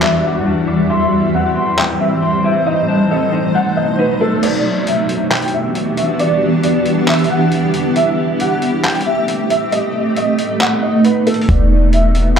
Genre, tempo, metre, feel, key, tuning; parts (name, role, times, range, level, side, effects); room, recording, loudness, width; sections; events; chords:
hip hop, atmospheric cloud-rap; 136 BPM; 4/4; half-time; E minor; A4 = 440 Hz
felt-muted upright piano; melody; 0.0-12.4 s; A4 to G5; -18 LUFS; equal; ensemble chorus, low-pass filter, ping-pong delay
granular cloud pad; sustained chords; 0.0-12.4 s; E2 to E5; -15 LUFS; right 1 dB; built-in reverb, analog chorus, sidechain pumping, low-pass filter
electric guitar at the edge of break-up; arpeggios; 0.0-4.4 s; C4 to D6; -23 LUFS; left 3 dB; wide subtle chorus, low-pass filter, ping-pong delay
trip hop sampler-style drum kit; drums; 0.0-12.4 s; crash cymbal, handclaps, hi-hat, kick drum; -21 LUFS; left 1 dB; overdrive
clean 808-style bass; bass; 11.5-12.4 s; E1; -12 LUFS; equal
wet plate reverb, RT60 1.5 s; dreamy mix soaked in reverb; -13 LUFS; side -7 dB against mid
0.0-4.4 A section; 4.4-12.4 B section
kick muted 4.4-11.5
0.0 Em7; 0.9 Am7; 2.7 B7; 4.4 Em7; 8.0 Am7; 9.7 B7; 11.5 Em7